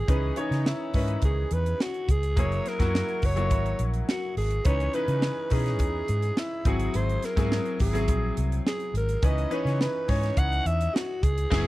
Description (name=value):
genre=polished 1980s jazz-funk pop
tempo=105 BPM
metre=4/4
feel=straight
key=unclear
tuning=A4 = 440 Hz
part: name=breathy alto saxophone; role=melody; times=0.0-11.7 s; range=D#4 to F#5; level=-30 LUFS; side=right 1 dB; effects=none
part: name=clear concert grand piano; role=accompaniment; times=0.0-11.7 s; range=D#3 to C#5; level=-32 LUFS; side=left 2 dB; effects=analog chorus
part: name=vintage muted fingered electric bass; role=bass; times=0.1-11.7 s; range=F#1 to C#3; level=-27 LUFS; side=equal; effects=none
part: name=crisp fusion drum kit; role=drums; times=0.1-11.7 s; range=crash cymbal, hi-hat, kick drum, snare drum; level=-27 LUFS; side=equal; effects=none
room=small room reverb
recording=dry, close 1970s-style studio recording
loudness=-24 LUFS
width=side -17 dB against mid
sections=0.0-11.7 A section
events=band accent 11.5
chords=0.1 C#m9; 2.4 F#9; 4.7 C#m9; 6.7 G#7b13; 9.2 C#m9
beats=| 0.09 0.66 1.23 1.80 | 2.37 2.94 3.51 4.09 | 4.66 5.23 5.80 6.37 | 6.95 7.52 8.09 8.66 | 9.23 9.80 10.37 10.95 | 11.52